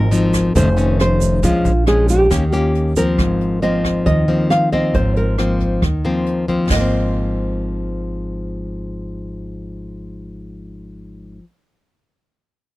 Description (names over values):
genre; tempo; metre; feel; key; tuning
bossa nova; 137 BPM; 4/4; straight; Ab major; A4 = 438 Hz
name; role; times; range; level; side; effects
nylon-string guitar; melody; 0.0-11.4 s; F4 to F5; -20 LUFS; right 1 dB; none
nylon-string guitar; accompaniment; 0.0-11.5 s; F2 to G4; -20 LUFS; left 2 dB; none
upright bass; bass; 0.0-11.4 s; F1 to Eb2; -20 LUFS; equal; none
jazz brush drum kit; drums; 0.1-6.8 s; crash cymbal, hi-hat, kick drum, rim click, snare drum; -24 LUFS; equal; none
egg shaker; percussion; 0.1-3.2 s; none; -31 LUFS; right 14 dB; none
room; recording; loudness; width
little or no reverb; dry, close 1970s-style studio recording; -14 LUFS; side -18 dB against mid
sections
0.0-3.2 A section; 3.2-6.7 B section; 6.7-10.2 C section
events
none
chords
0.0 Ab6; 0.5 F7b13; 1.4 Bbm7; 2.3 Eb7; 3.2 Ab69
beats
0.11 0.55 0.99 | 1.43 1.87 2.31 2.75 | 3.18 3.62 4.06 4.50 | 4.94 5.38 5.82 6.26 | 6.70 7.14 7.58 8.01 | 8.45 8.89 9.33 9.77